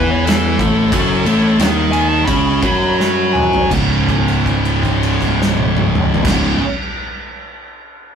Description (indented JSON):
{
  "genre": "stoner and doom metal",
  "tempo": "81-93 BPM",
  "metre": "4/4",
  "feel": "straight",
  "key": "C# minor",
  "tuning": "A4 = 440 Hz",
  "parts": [
    { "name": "fuzz lead guitar", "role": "melody", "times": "0.0-3.7 s", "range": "A4 to B5", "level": "-22 LUFS", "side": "equal", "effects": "distortion, tape echo" },
    { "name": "thick fuzz guitar", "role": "riff", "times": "0.0-6.6 s", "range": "C#2 to F#4", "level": "-18 LUFS", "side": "left 6 dB", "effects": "distortion" },
    { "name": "thick fuzz guitar", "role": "riff", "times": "0.0-6.6 s", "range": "C#2 to F#4", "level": "-18 LUFS", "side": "right 5 dB", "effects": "distortion" },
    { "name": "overdriven fingered electric bass", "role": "bass", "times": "0.0-6.6 s", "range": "C#1 to F#2", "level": "-20 LUFS", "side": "equal", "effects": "none" },
    { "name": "oversized low-tuned drum kit", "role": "drums", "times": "0.3-6.4 s", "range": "crash cymbal, kick drum, ride cymbal, snare drum, toms", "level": "-19 LUFS", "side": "equal", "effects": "none" }
  ],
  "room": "wet studio reverb, RT60 0.5 s",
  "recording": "rough rehearsal-room recording",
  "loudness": "-12 LUFS",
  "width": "side -7 dB against mid",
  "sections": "0.0-3.7 A section; 3.7-6.7 B section",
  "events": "slowing down 0.0-3.7; lead electric guitar solo 0.0-3.7; drum fill 3.0-3.7; held note 3.7-6.2",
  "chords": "0.0 A5; 3.7 C#5"
}